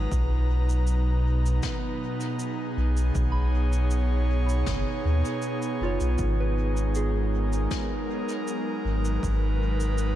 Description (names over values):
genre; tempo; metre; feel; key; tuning
ambient dub; 79 BPM; 4/4; straight; unclear; A4 = 440 Hz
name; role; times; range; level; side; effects
airy breathy pad; sustained chords; 0.0-10.2 s; B2 to A#5; -29 LUFS; right 1 dB; chorus
soft synth bell; arpeggios; 0.0-10.2 s; E#4 to B5; -38 LUFS; right 1 dB; chorus, vintage 12-bit sampler grit, analog delay
warm sub bass; bass; 0.0-10.2 s; F#1 to D#2; -24 LUFS; equal; tube saturation
cabasa and snare drum; drums; 0.1-10.1 s; none; -41 LUFS; left 3 dB; dub echo
electronic kick drum; drums; 0.1-9.4 s; none; -32 LUFS; equal; overdrive
room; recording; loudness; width
light reverb, studio reverb; none; -24 LUFS; side -13 dB against mid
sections
0.0-10.2 A section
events
none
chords
0.1 B6; 6.2 G#m7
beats
| 0.11 0.87 1.63 2.39 | 3.15 3.91 4.67 5.43 | 6.19 6.95 7.71 8.47 | 9.23 9.99